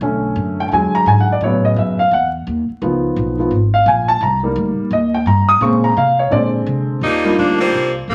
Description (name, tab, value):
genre	jazz, big band swing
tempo	171 BPM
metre	4/4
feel	swing 63% on 8ths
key	unclear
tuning	A4 = 440 Hz
part	warm concert grand piano	accompaniment	0.0-7.7 s	C#3 to Eb6	-17 LUFS	equal	none
part	upright bass	bass	0.0-8.1 s	Ab1 to C3	-21 LUFS	equal	none
part	edgy saxophone section	melody	7.0-8.1 s	D3 to Eb4	-18 LUFS	equal	none
room	wet studio reverb, RT60 0.8 s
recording	vinyl crackle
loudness	-16 LUFS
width	mono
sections	0.0-7.0 A section; 7.0-8.1 B section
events	grand piano solo 0.0-7.0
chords	0.0 Bm9; 0.7 E9; 1.4 A69; 2.8 Db9; 4.2 Cm7; 5.6 Bbm9; 6.3 Bb9; 7.0 Ebmaj9